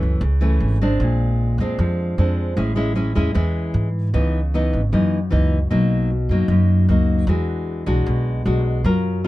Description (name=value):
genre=bossa nova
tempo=153 BPM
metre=4/4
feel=straight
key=unclear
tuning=A4 = 440 Hz
part: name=nylon-string guitar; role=accompaniment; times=0.0-9.3 s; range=F#2 to A#4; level=-20 LUFS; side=left 1 dB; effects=none
part: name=upright bass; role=bass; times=0.0-9.3 s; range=G#1 to G#2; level=-20 LUFS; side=equal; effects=none
room=little or no reverb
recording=close, detailed microphones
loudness=-17 LUFS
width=side -17 dB against mid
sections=0.0-9.3 A section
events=none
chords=0.0 F#m7; 1.0 A#9; 2.6 Amaj7; 4.1 C#m9; 4.9 F#6; 5.7 Bmaj7; 7.3 E9